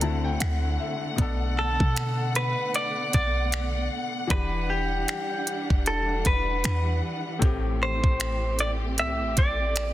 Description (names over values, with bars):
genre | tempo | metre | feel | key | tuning
contemporary R&B | 77 BPM | 4/4 | swing 58% on 16ths | E minor | A4 = 442 Hz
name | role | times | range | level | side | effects
direct-recorded clean electric guitar | melody | 0.0-9.9 s | F#4 to E5 | -28 LUFS | equal | lush chorus
clear grand piano | accompaniment | 0.0-9.9 s | A2 to A5 | -34 LUFS | left 4 dB | none
warm studio string section | sustained chords | 0.0-9.9 s | D3 to F#5 | -33 LUFS | equal | none
clean 808-style bass | bass | 0.0-9.9 s | E1 to B2 | -28 LUFS | equal | none
trap drum kit | drums | 0.0-9.9 s | finger snaps, hi-hat, kick drum | -26 LUFS | equal | soft clipping on snare
room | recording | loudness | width
light reverb | dense, heavily limited modern master | -23 LUFS | side -14 dB against mid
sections
0.0-9.9 A section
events
grand piano fill 0.0-1.2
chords
0.0 D7; 1.2 Bm7; 4.3 Em9; 7.4 Am7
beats
0.41 | 1.19 1.97 2.74 3.52 | 4.30 5.08 5.86 6.64 | 7.42 8.20 8.98 9.76